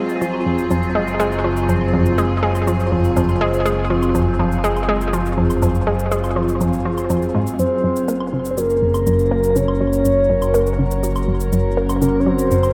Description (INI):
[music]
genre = ambient, sequencer-driven space music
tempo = 122 BPM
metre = 4/4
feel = straight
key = unclear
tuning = A4 = 440 Hz
[part]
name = evolving wavetable pad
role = sustained chords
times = 0.0-12.7 s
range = Gb3 to C5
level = -24 LUFS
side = equal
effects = chorus, built-in reverb, phaser, shimmer reverb
[part]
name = analog pluck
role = riff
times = 0.0-12.7 s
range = F2 to Bb3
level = -23 LUFS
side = equal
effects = chorus, shimmer reverb, delay
[part]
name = analog drone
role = bass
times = 0.7-12.7 s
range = Gb1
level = -25 LUFS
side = equal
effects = chorus
[part]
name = cabasa and woodblock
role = percussion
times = 0.1-12.7 s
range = none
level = -37 LUFS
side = equal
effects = delay
[part]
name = soft octave-layered synth lead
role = melody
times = 7.6-12.7 s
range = Bb4 to Db5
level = -22 LUFS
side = equal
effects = chorus, phaser, cassette tape, shimmer reverb, delay
[sound]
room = wet spring reverb, RT60 2.4 s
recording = echo-heavy mix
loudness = -18 LUFS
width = mono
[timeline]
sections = 0.0-12.7 A section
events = fade-in on drum 0.0-12.7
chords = 0.0 Fm/Gb; 7.6 Gb